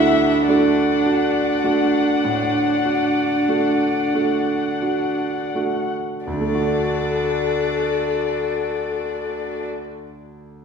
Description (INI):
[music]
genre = classical, slow romantic movement for piano quintet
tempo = 27-36 BPM (dotted quarters)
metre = 12/8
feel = rubato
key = D major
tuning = A4 = 440 Hz
[part]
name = dark violin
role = melody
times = 0.0-9.7 s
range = D5 to E5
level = -27 LUFS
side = left 8 dB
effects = none
[part]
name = dark violin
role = second line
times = 0.0-9.7 s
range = A4 to F#5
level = -25 LUFS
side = left 6 dB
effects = none
[part]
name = rich cello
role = second line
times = 0.0-9.7 s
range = D4 to E4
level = -27 LUFS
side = right 4 dB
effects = none
[part]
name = clear concert grand piano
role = accompaniment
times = 0.0-10.6 s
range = D2 to D5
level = -24 LUFS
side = right 3 dB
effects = none
[part]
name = warm viola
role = accompaniment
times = 0.0-9.7 s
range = D4 to F#4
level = -22 LUFS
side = right 2 dB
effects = none
[sound]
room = wet scoring stage reverb, RT60 1.7 s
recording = heard from further back in the room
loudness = -18 LUFS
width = side -6 dB against mid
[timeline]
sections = 0.0-6.3 A section; 6.3-10.6 B section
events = slowing down 0.0-6.3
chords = 0.0 D